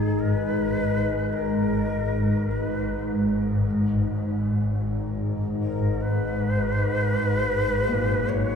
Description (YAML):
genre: ambient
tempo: free time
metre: none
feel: none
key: unclear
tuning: A4 = 440 Hz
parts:
  - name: breathy shakuhachi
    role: melody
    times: 0.0-8.6 s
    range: G#4 to C#5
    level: -29 LUFS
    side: left 1 dB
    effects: tape echo
  - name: deep dark ambient pad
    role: sustained chords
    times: 0.0-8.6 s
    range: G#2 to A#5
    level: -26 LUFS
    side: left 1 dB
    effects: chorus, built-in reverb
  - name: dark grand piano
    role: arpeggios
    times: 0.0-8.6 s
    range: A#2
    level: -30 LUFS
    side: left 2 dB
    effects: none
  - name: swarming drone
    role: drone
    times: 0.0-8.6 s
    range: G#1 to G#2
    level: -26 LUFS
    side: equal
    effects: built-in reverb
room: wet cathedral reverb, RT60 5.2 s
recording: in a vast, echoing space, small room ambience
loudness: -22 LUFS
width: side -6 dB against mid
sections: 0.0-8.6 A section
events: none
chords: 0.0 B/G#